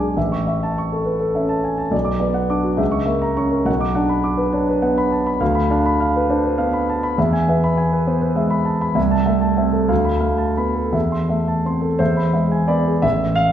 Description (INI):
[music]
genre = classical, romantic character piece for solo piano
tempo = 55-70 BPM (dotted quarters)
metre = 6/8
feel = rubato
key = unclear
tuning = A4 = 440 Hz
[part]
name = warm concert grand piano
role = solo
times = 0.0-13.5 s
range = A1 to D6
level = -16 LUFS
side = equal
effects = none
[sound]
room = wet recital hall reverb, RT60 1.3 s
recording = heard from further back in the room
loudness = -16 LUFS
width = side -10 dB against mid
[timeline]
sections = 0.0-13.0 A section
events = none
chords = 0.2 A; 1.9 Bm; 2.8 A#dim/C#; 3.7 Bm; 5.4 Bdim/D; 7.2 E; 9.0 Am/C; 9.9 Bm7b5/D; 10.9 Am/E; 12.0 E